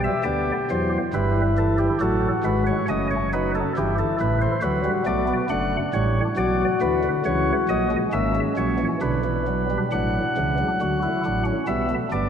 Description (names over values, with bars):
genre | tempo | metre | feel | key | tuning
classical, baroque-style 4-part fugue for pipe organ | 68 BPM | 3/4 | straight | E minor | A4 = 443 Hz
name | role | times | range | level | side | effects
chamber organ, flutes | solo | 0.0-12.3 s | F#1 to F#5 | -20 LUFS | equal | none
room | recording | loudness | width
wet church reverb, RT60 3.3 s | none | -20 LUFS | side -8 dB against mid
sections
0.0-9.9 A section; 9.9-12.3 B section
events
none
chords
0.0 Em; 2.0 D#dim; 3.8 Em/G; 4.6 Bm; 7.2 A#dim; 9.0 Bm; 9.9 D/A; 11.7 Bm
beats
0.26 1.15 | 2.02 2.89 3.75 | 4.62 5.49 6.37 | 7.25 8.13 9.01 | 9.89 10.79 11.67